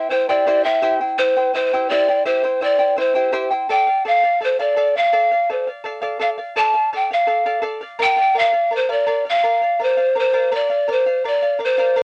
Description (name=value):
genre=andean folk, Andean ensemble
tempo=84 BPM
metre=3/4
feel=straight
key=D minor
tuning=A4 = 435 Hz
part: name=breathy mellow pan flute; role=melody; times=0.0-12.0 s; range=C5 to A5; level=-18 LUFS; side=equal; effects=none
part: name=charango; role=accompaniment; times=0.0-12.0 s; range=E4 to G5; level=-26 LUFS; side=equal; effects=cassette tape
room=light reverb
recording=home recording on cassette, nothing above 10.6 kHz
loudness=-18 LUFS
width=mono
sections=0.0-12.0 A section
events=none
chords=0.0 C; 3.7 Dm; 8.0 Bb